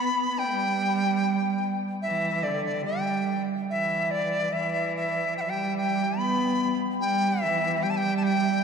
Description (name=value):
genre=chinese traditional, Chinese chamber ensemble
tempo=73 BPM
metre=2/4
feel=straight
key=G gong mode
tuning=A4 = 440 Hz
part: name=bright dizi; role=melody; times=0.0-8.6 s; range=D5 to B5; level=-26 LUFS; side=left 1 dB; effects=none
part: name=rich cello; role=second line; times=0.0-8.6 s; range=D3 to B3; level=-27 LUFS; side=right 2 dB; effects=none
room=wet cathedral reverb, RT60 5.0 s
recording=in a vast, echoing space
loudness=-24 LUFS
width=side -6 dB against mid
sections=0.0-3.7 A section; 3.7-8.6 B section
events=none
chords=none